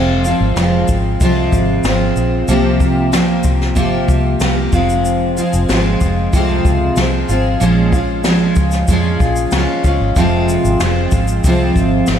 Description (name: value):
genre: acoustic pop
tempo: 94 BPM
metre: 4/4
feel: straight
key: F minor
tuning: A4 = 440 Hz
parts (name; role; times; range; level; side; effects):
- picked steel-string acoustic guitar; accompaniment; 0.0-12.2 s; F2 to G4; -14 LUFS; right 1 dB; double-tracked left and right
- vintage muted fingered electric bass; bass; 0.0-12.2 s; F1 to F2; -18 LUFS; equal; none
- jazz brush drum kit; drums; 0.2-12.2 s; kick drum, shaker, snare drum; -19 LUFS; left 1 dB; none
room: moderate church reverb, RT60 3.4 s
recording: dreamy mix soaked in reverb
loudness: -12 LUFS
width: side -9 dB against mid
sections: 0.0-12.2 A section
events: none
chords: 0.0 Fm; 2.5 C7sus4; 4.7 Fm; 7.6 Bbm7; 10.2 Fm